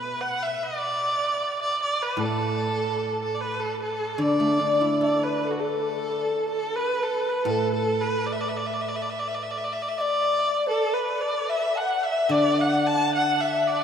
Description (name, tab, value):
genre	chinese traditional, Chinese chamber ensemble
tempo	74 BPM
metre	2/4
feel	rubato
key	D gong mode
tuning	A4 = 440 Hz
part	clear erhu	melody	0.0-13.8 s	F#4 to A5	-26 LUFS	right 1 dB	none
part	guzheng	accompaniment	0.0-9.8, 12.3-13.8 s	A2 to A4	-27 LUFS	left 1 dB	none
part	low xiao	second line	5.0-13.8 s	A4 to A5	-26 LUFS	left 2 dB	none
room	wet cathedral reverb, RT60 5.1 s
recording	in a vast, echoing space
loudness	-22 LUFS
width	side -8 dB against mid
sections	0.0-5.9 A section; 5.9-13.8 B section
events	none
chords	none